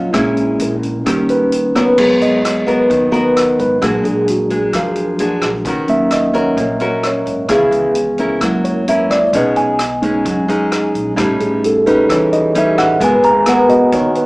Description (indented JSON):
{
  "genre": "bossa nova",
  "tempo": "130 BPM",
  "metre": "4/4",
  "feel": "straight",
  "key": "G# minor",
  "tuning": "A4 = 440 Hz",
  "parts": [
    { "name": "mellow tine electric piano", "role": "accompaniment", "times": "0.0-14.3 s", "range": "E3 to A#5", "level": "-15 LUFS", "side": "right 1 dB", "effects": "medium stereo tremolo" },
    { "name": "nylon-string guitar", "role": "accompaniment", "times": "0.0-14.3 s", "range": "A2 to Bb4", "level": "-15 LUFS", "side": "equal", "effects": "none" },
    { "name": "upright bass", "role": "bass", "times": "0.0-14.3 s", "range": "G#1 to G#2", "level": "-28 LUFS", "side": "equal", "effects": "none" },
    { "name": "swinging big-band drum kit", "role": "drums", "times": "0.1-14.3 s", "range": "crash cymbal, hi-hat, kick drum, rim click", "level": "-23 LUFS", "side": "equal", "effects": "none" }
  ],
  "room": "moderate small room reverb, RT60 0.6 s",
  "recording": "heard from further back in the room, small speaker sound",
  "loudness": "-12 LUFS",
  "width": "side -24 dB against mid",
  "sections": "0.0-2.0 A section; 2.0-14.3 A section",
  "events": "tine electric piano solo 0.0-14.3",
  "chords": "0.1 Bbm7b5; 1.1 Eb7; 2.0 G#m9; 3.8 A#7b13; 5.7 D#m7; 7.5 C#m7; 8.4 F#7; 9.3 B69; 11.2 A7#11; 13.0 G#m9",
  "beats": "| 0.13 0.59 1.05 1.51 | 1.97 2.43 2.89 3.35 | 3.81 4.27 4.73 5.19 | 5.65 6.11 6.57 7.03 | 7.49 7.95 8.41 8.87 | 9.33 9.79 10.25 10.71 | 11.17 11.63 12.09 12.55 | 13.01 13.47 13.93"
}